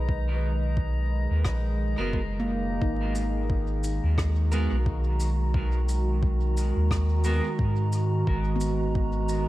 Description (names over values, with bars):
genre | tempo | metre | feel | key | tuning
ambient dub | 88 BPM | 4/4 | swing 56% on 16ths | G# minor | A4 = 440 Hz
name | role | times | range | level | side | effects
warbly tape-like pad | sustained chords | 0.0-9.5 s | D#3 to A#5 | -31 LUFS | right 2 dB | chorus, built-in reverb
handpan | arpeggios | 0.0-9.5 s | A#3 to B4 | -35 LUFS | left 1 dB | dub echo
soft dub sub bass | bass | 0.0-9.4 s | F#1 to G#2 | -25 LUFS | equal | none
drifting glass-harmonics texture | texture | 0.0-2.9 s | D#4 to A#5 | -42 LUFS | left 2 dB | chorus, built-in reverb
electronic kick drum | drums | 0.1-9.1 s | none | -28 LUFS | equal | none
rim click and shaker | drums | 1.4-9.4 s | none | -39 LUFS | left 1 dB | dub echo
clean electric guitar | stabs | 2.0-7.5 s | G#3 to A#4 | -37 LUFS | right 2 dB | lush chorus, dub echo
room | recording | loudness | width
small room ambience | vinyl crackle | -24 LUFS | side -16 dB against mid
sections
0.0-2.8 A section; 2.8-9.5 B section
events
none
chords
0.0 G#m9